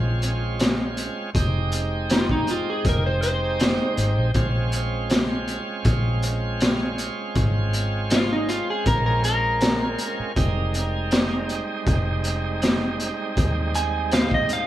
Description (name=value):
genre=straight-eighth soul blues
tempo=80 BPM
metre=4/4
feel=straight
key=F minor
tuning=A4 = 441 Hz
part: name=electric slide guitar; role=melody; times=0.0-14.7 s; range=Eb4 to Ab5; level=-26 LUFS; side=equal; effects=none
part: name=bright tonewheel organ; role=accompaniment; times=0.0-14.7 s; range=G3 to G4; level=-28 LUFS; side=right 4 dB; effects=slow rotary speaker, overdrive
part: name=vintage muted fingered electric bass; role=bass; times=0.0-14.6 s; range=F1 to Eb2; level=-25 LUFS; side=equal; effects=none
part: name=crunchy breakbeat drum kit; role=drums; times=0.2-14.7 s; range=hi-hat, kick drum, snare drum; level=-23 LUFS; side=equal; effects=none
room=moderate studio reverb, RT60 0.5 s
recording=band playing live in one room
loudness=-20 LUFS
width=side -13 dB against mid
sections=0.0-14.7 A section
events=none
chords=0.0 Bbm7; 1.3 Fm7; 4.3 Bbm7; 10.4 Fm7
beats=0.59 | 1.34 2.09 2.85 3.60 | 4.35 5.10 5.85 6.60 | 7.36 8.11 8.86 9.61 | 10.37 11.12 11.87 12.62 | 13.37 14.12